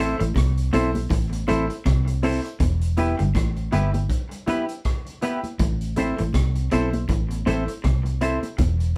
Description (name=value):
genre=roots reggae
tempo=80 BPM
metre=4/4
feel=swing 57% on 16ths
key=unclear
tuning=A4 = 440 Hz
part: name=semi-hollow electric guitar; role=accompaniment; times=0.0-8.4 s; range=B3 to C5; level=-27 LUFS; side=equal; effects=none
part: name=bright grand piano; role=stabs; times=0.0-8.4 s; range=E4 to E5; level=-31 LUFS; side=equal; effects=none
part: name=vintage muted fingered electric bass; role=bass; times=0.0-9.0 s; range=E1 to C2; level=-25 LUFS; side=equal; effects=none
part: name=electric guitar through a small old amp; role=riff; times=0.2-8.8 s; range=E2 to C3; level=-34 LUFS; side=equal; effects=dub echo
part: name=vintage drum kit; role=drums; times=0.2-8.9 s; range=hi-hat, kick drum, rim click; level=-29 LUFS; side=equal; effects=none
part: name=congas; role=percussion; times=0.3-8.8 s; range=none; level=-36 LUFS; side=equal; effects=none
room=light reverb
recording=band playing live in one room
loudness=-23 LUFS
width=mono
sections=0.0-2.6 A section; 2.6-9.0 B section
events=none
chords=0.0 Am; 2.6 Em; 5.6 Am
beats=0.36 1.10 1.85 | 2.60 3.35 4.10 4.85 | 5.59 6.34 7.09 7.84 | 8.59